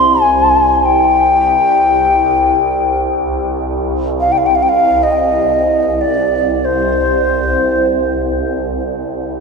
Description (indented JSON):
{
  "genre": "world meditative, free-time meditation music",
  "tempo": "free time",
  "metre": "none",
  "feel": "none",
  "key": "C minor",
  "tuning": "A4 = 440 Hz",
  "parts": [
    { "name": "mellow xiao", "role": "melody", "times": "0.0-8.4 s", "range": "C5 to C6", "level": "-12 LUFS", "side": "left 1 dB", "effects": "tape echo" },
    { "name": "swarming drone", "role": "drone", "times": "0.0-9.4 s", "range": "C2", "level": "-17 LUFS", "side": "right 1 dB", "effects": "built-in reverb" }
  ],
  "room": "wet huge ambient reverb, RT60 4.7 s",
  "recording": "nothing above 10.6 kHz",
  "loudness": "-11 LUFS",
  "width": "side -4 dB against mid",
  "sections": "0.0-9.4 A section",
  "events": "none",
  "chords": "none"
}